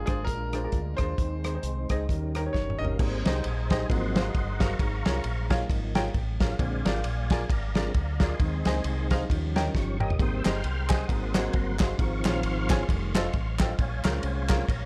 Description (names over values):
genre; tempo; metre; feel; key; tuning
uptempo gospel; 133 BPM; 4/4; swing 58% on 8ths; Ab major; A4 = 440 Hz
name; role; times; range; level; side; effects
clear concert grand piano; melody; 0.0-2.8 s; Ab4 to Eb5; -39 LUFS; equal; slapback echo
clear upright piano; accompaniment; 0.0-14.6 s; Ab2 to Ab5; -36 LUFS; equal; none
mellow French horn section; sustained chords; 0.0-3.0 s; Ab3 to Ab4; -48 LUFS; equal; none
tonewheel organ; sustained chords; 0.0-14.9 s; D3 to F6; -37 LUFS; equal; slow rotary speaker, overdrive, chorus vibrato
deep dub fingered electric bass; bass; 0.0-14.9 s; F1 to Eb2; -33 LUFS; equal; none
warm soul drum kit; drums; 0.1-14.8 s; crash cymbal, hi-hat, kick drum, ride cymbal, rim click, snare drum, toms; -30 LUFS; equal; none
group handclap; percussion; 10.4-14.6 s; none; -42 LUFS; equal; none
room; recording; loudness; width
light reverb, small room ambience; dark, warm production; -27 LUFS; mono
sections
0.0-3.0 A section; 3.0-14.9 B section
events
drum fill 2.5-3.0, 9.7-10.2; tonewheel organ solo 3.0-14.9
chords
0.0 Bb7; 1.2 Ab/Eb; 2.1 Eb7; 3.0 Abmaj7; 3.9 Ab13; 4.8 Db6/Ab; 6.6 Bb7; 8.4 Ab; 9.3 Eb7; 10.2 Abmaj7; 11.1 Ab7; 12.0 Dbmaj7/Ab; 12.9 F7; 13.8 Bbm7